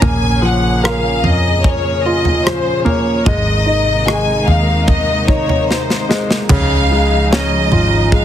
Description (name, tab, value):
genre	pop ballad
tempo	74 BPM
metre	4/4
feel	straight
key	Db major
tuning	A4 = 440 Hz
part	clear studio violin section	melody	0.0-8.2 s	C5 to Ab5	-18 LUFS	left 2 dB	none
part	clear concert grand piano	accompaniment	0.0-8.2 s	Db3 to Bb4	-19 LUFS	right 1 dB	none
part	rich studio string section	sustained chords	0.0-8.2 s	Bb2 to Ab4	-21 LUFS	equal	none
part	vintage muted fingered electric bass	bass	0.0-8.2 s	Ab1 to F2	-18 LUFS	equal	none
part	modern studio drum kit	drums	0.0-8.2 s	crash cymbal, kick drum, rim click, snare drum, toms	-18 LUFS	equal	none
room	light reverb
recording	heavily compressed radio sound, multiband compression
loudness	-12 LUFS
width	side -10 dB against mid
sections	0.0-6.5 A section; 6.5-8.2 B section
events	drum fill 5.7-6.5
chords	0.0 Bbm; 3.3 Abadd9; 6.5 Dbadd9